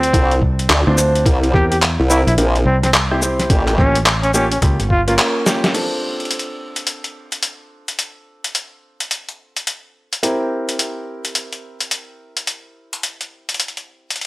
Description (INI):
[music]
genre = glitch hop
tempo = 107 BPM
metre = 4/4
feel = swing 62% on 16ths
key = D minor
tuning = A4 = 441 Hz
[part]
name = mellow trumpet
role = melody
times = 0.0-5.1 s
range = C4 to G4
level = -20 LUFS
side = equal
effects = analog delay
[part]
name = fingered electric bass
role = bass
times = 0.0-5.2 s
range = G1 to E2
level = -18 LUFS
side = equal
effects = none
[part]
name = boom bap sampler-style drum kit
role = drums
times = 0.0-14.3 s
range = crash cymbal, handclaps, hi-hat, shaker, snare drum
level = -19 LUFS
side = equal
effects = studio reverb
[part]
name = warm grand piano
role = stabs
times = 0.1-14.3 s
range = Bb3 to C5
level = -21 LUFS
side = equal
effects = vintage 12-bit sampler grit, sidechain pumping, analog delay
[part]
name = formant-sweep wobble bass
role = bass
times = 0.1-3.8 s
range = A1 to D2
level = -16 LUFS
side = equal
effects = chorus
[part]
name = electronic kick drum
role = drums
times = 0.1-5.0 s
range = none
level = -17 LUFS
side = equal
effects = studio reverb
[sound]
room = digital ambience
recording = dry, gritty hardware recording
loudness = -15 LUFS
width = side -21 dB against mid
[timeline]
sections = 0.0-5.7 A section; 5.7-14.3 B section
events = drop 0.0-5.7; band accent 5.2; drum fill 5.5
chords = 0.0 Dm7; 1.3 C7; 3.5 A7b9b13; 5.7 Dm7; 10.2 C7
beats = 0.14 0.70 | 1.26 1.82 2.38 2.94 | 3.50 4.06 4.62 5.18 | 5.74 6.30 6.87 7.43 | 7.99 8.55 9.11 9.67 | 10.23 10.79 11.35 11.91 | 12.47 13.03 13.59 14.15